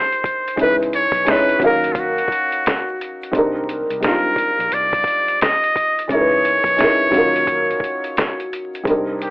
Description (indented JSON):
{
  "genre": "lo-fi hip hop",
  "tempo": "87 BPM",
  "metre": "4/4",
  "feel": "swing 63% on 16ths",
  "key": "unclear",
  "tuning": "A4 = 441 Hz",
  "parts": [
    { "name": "trumpet with metal mute", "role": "melody", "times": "0.0-9.3 s", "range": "F4 to Eb5", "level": "-18 LUFS", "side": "equal", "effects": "low-pass filter, tape echo" },
    { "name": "felt-muted upright piano", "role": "accompaniment", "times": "0.0-9.3 s", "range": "Gb3 to F5", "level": "-20 LUFS", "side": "equal", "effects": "low-pass filter, plate reverb" },
    { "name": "lo-fi sampler-style drum kit", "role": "drums", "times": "0.1-9.3 s", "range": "hi-hat, kick drum, snare drum", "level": "-22 LUFS", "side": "equal", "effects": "none" },
    { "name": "egg shaker", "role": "percussion", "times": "0.1-9.3 s", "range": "none", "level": "-62 LUFS", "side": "left 1 dB", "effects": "none" },
    { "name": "vintage muted fingered electric bass", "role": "bass", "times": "0.6-9.3 s", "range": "Bb1 to Eb2", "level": "-36 LUFS", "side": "equal", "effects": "none" }
  ],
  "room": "moderate small room reverb, RT60 0.5 s",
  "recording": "vinyl crackle, telephone sound",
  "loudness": "-15 LUFS",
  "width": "side -24 dB against mid",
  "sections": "0.0-9.3 A section",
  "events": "none",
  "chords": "0.0 Cm9; 0.6 Dbm9; 1.6 Ebm9; 3.3 Cm9; 6.1 Dbm9; 7.1 Ebm9"
}